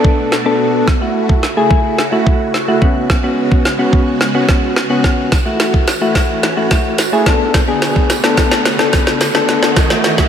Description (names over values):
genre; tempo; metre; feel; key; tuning
dance-pop; 108 BPM; 4/4; straight; F# minor; A4 = 440 Hz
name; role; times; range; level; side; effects
soft electric-piano-like synth keys; accompaniment; 0.0-10.3 s; A3 to A4; -15 LUFS; left 2 dB; chorus, tremolo, sidechain pumping, slapback echo
phased string machine; sustained chords; 0.0-10.3 s; B2 to F#4; -21 LUFS; right 2 dB; ensemble chorus, phaser, sidechain pumping
smooth R&B drum kit; drums; 0.0-10.3 s; hi-hat, kick drum, snare drum; -14 LUFS; equal; none
tambourine; percussion; 5.3-10.2 s; none; -31 LUFS; right 9 dB; none
riser; sound effects; 7.0-10.3 s; none; -24 LUFS; equal; slapback echo
room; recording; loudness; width
moderate lush hall reverb, RT60 2.0 s; big arena sound; -11 LUFS; side -8 dB against mid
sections
0.0-10.3 A section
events
build-up 0.0-10.3; drum fill 0.0-10.3; riser 7.0-10.3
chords
0.0 Bm7; 0.9 F#m7; 2.8 C#7sus4; 5.3 F#m7; 7.3 Bm7; 9.8 F#m7